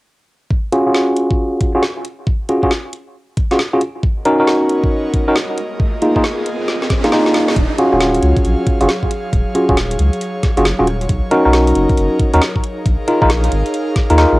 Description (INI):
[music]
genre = UK garage, two-step garage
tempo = 136 BPM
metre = 4/4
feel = swing 64% on 16ths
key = Eb minor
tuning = A4 = 439 Hz
[part]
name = electronic kick drum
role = drums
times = 0.5-14.1 s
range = none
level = -17 LUFS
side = equal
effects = cassette tape
[part]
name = tine electric piano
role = stabs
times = 0.7-14.4 s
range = Bb3 to A#4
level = -14 LUFS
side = equal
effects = overdrive, low-pass filter, cassette tape, analog delay
[part]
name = garage drum kit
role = drums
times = 0.7-14.3 s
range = hi-hat, rim click, snare drum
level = -22 LUFS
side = equal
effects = cassette tape
[part]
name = airy breathy pad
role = sustained chords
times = 4.0-14.4 s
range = Gb3 to F5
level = -24 LUFS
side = equal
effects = chorus, sidechain pumping, cassette tape
[part]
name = riser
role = sound effects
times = 4.9-7.6 s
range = none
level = -26 LUFS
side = right 1 dB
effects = none
[part]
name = soft dub sub bass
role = bass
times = 7.6-14.4 s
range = Eb1 to D#2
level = -16 LUFS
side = equal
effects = sidechain pumping
[part]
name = ethereal airy pad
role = texture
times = 9.2-14.4 s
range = Eb4 to Db5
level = -30 LUFS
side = right 2 dB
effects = none
[sound]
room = light reverb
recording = home recording on cassette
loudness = -13 LUFS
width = side -20 dB against mid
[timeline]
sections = 0.5-7.6 A section; 7.6-14.4 B section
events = filter sweep on tine electric piano 0.5-7.6, 7.6-14.4; riser 4.9-7.6; drum fill 6.7-7.6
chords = 0.5 Dbadd11; 4.0 Bmaj7; 5.6 Bb7sus4; 7.6 Ebm11; 11.1 Bmaj7; 12.6 Bb7sus4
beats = | 0.51 0.95 1.39 1.83 | 2.27 2.71 3.15 3.59 | 4.03 4.48 4.92 5.36 | 5.80 6.24 6.68 7.12 | 7.56 8.01 8.45 8.89 | 9.33 9.77 10.21 10.65 | 11.09 11.53 11.98 12.42 | 12.86 13.30 13.74 14.18